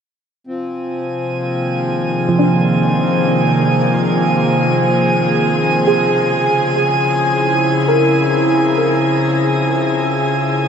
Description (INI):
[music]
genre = ambient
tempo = 68 BPM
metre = 3/4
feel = straight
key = unclear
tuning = A4 = 439 Hz
[part]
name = airy breathy pad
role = sustained chords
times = 0.4-10.7 s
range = C3 to Ab4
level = -16 LUFS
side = equal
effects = chorus
[part]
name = hand-pumped harmonium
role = drone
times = 0.5-10.7 s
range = F3 to C4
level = -21 LUFS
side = left 1 dB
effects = none
[part]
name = drifting glass-harmonics texture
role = texture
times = 0.9-10.7 s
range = Ab5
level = -20 LUFS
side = right 2 dB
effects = chorus, built-in reverb
[part]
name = soft round pluck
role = arpeggios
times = 2.3-10.4 s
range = F3 to Bb4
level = -21 LUFS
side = right 1 dB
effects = none
[sound]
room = wet shimmer reverb, RT60 7.7 s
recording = none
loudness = -13 LUFS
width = side -7 dB against mid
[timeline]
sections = 0.5-10.7 A section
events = none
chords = 0.5 Fm; 5.8 Dbm